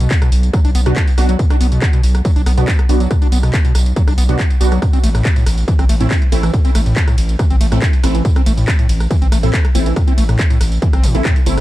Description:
driving peak-time techno; 140 BPM; 4/4; straight; A4 = 443 Hz
overdriven acid bass; riff; 0.0-11.6 s; A2 to D4; -21 LUFS; equal; distortion, analog chorus, cassette tape, sidechain pumping, tape echo
gritty driven synth bass; bass; 0.0-11.6 s; G1 to B1; -15 LUFS; equal; sidechain pumping
punchy analog drum machine; drums; 0.0-11.6 s; handclaps, hi-hat, ride cymbal, rim click, tambourine; -24 LUFS; equal; sidechain pumping on hats, sidechain pumping on perc, sidechain pumping on cymbals
electronic kick drum; drums; 0.1-11.3 s; -14 LUFS; equal
rave stab; stabs; 0.9-11.6 s; A3 to F#4; -23 LUFS; right 2 dB; chorus, built-in reverb, sidechain pumping, tape echo
digital ambience; dark, warm production; -12 LUFS; side -16 dB against mid
0.0-11.6 A section
0.0 Bm; 4.8 Am
0.11 0.54 0.96 | 1.39 1.82 2.25 2.68 | 3.11 3.54 3.96 4.39 | 4.82 5.25 5.68 6.11 | 6.54 6.96 7.39 7.82 | 8.25 8.68 9.11 9.54 | 9.96 10.39 10.82 11.25

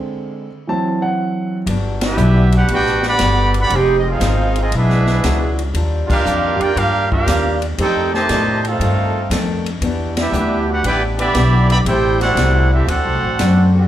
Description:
jazz, big band swing; 118 BPM; 4/4; swing 69% on 8ths; A4 = 440 Hz
warm grand piano; accompaniment; 0.0-1.6 s; D3 to A5; -20 LUFS; right 2 dB; plate reverb, slapback echo
fingerpicked swing-style acoustic guitar; accompaniment; 1.7-13.8 s; F2 to Ab4; -26 LUFS; left 4 dB; plate reverb, slapback echo
upright bass; bass; 1.7-13.9 s; F1 to A2; -17 LUFS; equal
swinging big-band drum kit; drums; 1.7-13.6 s; crash cymbal, hi-hat, kick drum, ride cymbal, snare drum; -25 LUFS; equal
warm trumpet section; melody; 2.0-13.7 s; C4 to B5; -19 LUFS; right 2 dB; plate reverb, slapback echo
warm trombone section; second line; 2.0-13.7 s; C3 to G4; -21 LUFS; right 3 dB; plate reverb, slapback echo
mellow trombone section; sustained chords; 3.2-13.9 s; D3 to G4; -28 LUFS; equal; plate reverb
light reverb; live gig heard through the venue's PA, club reverb; -14 LUFS; side -12 dB against mid
0.0-1.7 A section; 1.7-13.9 B section
grand piano solo 0.0-1.7; stop 0.0-1.7; band accent 1.9, 6.0, 10.1
0.0 Ab; 0.7 Am6/E; 1.7 Gmaj7; 3.7 Fm7; 4.7 E9; 5.7 Ebmaj9; 7.8 F13; 9.8 Em7; 11.9 Am7; 12.9 D7
0.15 0.66 1.17 | 1.68 2.18 2.69 3.20 | 3.71 4.22 4.73 5.24 | 5.75 6.25 6.76 7.27 | 7.78 8.29 8.80 9.31 | 9.82 10.33 10.84 11.35 | 11.86 12.37 12.87 13.38

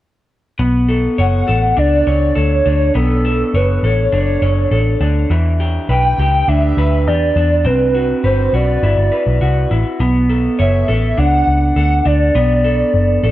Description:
indie pop, bedroom pop; 102 BPM; 4/4; straight; B minor; A4 = 440 Hz
electric guitar through a small old amp; accompaniment; 0.6-13.3 s; E3 to C#5; -18 LUFS; right 1 dB; lush chorus, warbly pitch drift
vintage muted picked electric bass; bass; 0.6-13.3 s; F#1 to E2; -15 LUFS; equal
hollow clarinet-like synth lead; melody; 1.2-13.3 s; A4 to G5; -17 LUFS; equal; ensemble chorus
digital ambience; -12 LUFS; side -14 dB against mid
0.6-13.3 A section
0.6 Bm9; 5.3 Em7; 7.7 Cmaj9#11; 10.0 Bm9
| 0.59 1.18 1.77 2.36 | 2.95 3.54 4.12 4.71 | 5.30 5.89 6.48 7.07 | 7.65 8.24 8.83 9.42 | 10.00 10.59 11.18 11.77 | 12.35 12.94

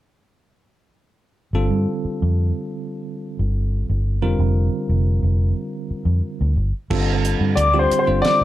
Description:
electric jazz fusion; 90 BPM; 4/4; straight; G minor; A4 = 440 Hz
bell-like tine electric piano; accompaniment; 1.5-8.4 s; D3 to C5; -24 LUFS; right 1 dB; medium stereo tremolo
vintage muted fingered electric bass; bass; 1.5-8.4 s; F1 to G2; -19 LUFS; equal
damped 70s drum kit; drums; 6.9-8.4 s; crash cymbal, hi-hat, kick drum, snare drum; -26 LUFS; right 2 dB
warm grand piano; melody; 7.6-8.4 s; C5 to D5; -18 LUFS; left 2 dB; slapback echo
silver concert flute; second line; 7.6-8.4 s; C6 to D6; -21 LUFS; left 6 dB; slapback echo
light reverb; -18 LUFS; side -14 dB against mid
1.5-6.9 A section; 6.9-8.4 B section
1.5 G9sus4; 4.2 Fsus24; 6.6 N.C.; 6.9 G9sus4
| 1.54 2.21 2.88 3.55 | 4.22 4.89 5.56 6.23 | 6.90 7.57 8.24

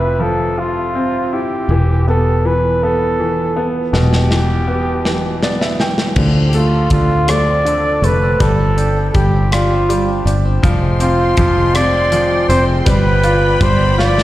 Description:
six-eight pop ballad; 54 BPM (dotted quarters); 6/8; straight; A4 = 440 Hz
warm flugelhorn; melody; 0.0-14.2 s; F4 to D5; -17 LUFS; equal; slapback echo
bright upright piano; accompaniment; 0.0-14.2 s; B2 to G5; -18 LUFS; equal; slapback echo
fingered electric bass; bass; 0.0-14.2 s; E1 to D2; -16 LUFS; equal
modern studio drum kit; drums; 3.9-14.2 s; crash cymbal, hi-hat, kick drum, rim click, snare drum; -19 LUFS; equal
direct-recorded clean electric guitar; arpeggios; 6.2-14.2 s; F3 to A4; -26 LUFS; left 2 dB; lush chorus, slapback echo
warm studio string section; sustained chords; 10.6-14.2 s; Ab3 to C6; -24 LUFS; equal
light reverb; live gig heard through the venue's PA, recital hall reverb; -12 LUFS; side -15 dB against mid
0.0-6.2 A section; 6.2-14.2 B section
drum fill 3.9-6.2, 14.0; upright piano fill 5.0-6.2
0.0 F5; 1.7 Em; 6.2 Dm7; 8.4 G7sus4; 10.6 Fmadd9; 12.9 G7
0.57 | 1.69 2.81 | 3.93 5.05 | 6.16 7.28 | 8.40 9.52 | 10.64 11.75 | 12.87 13.99

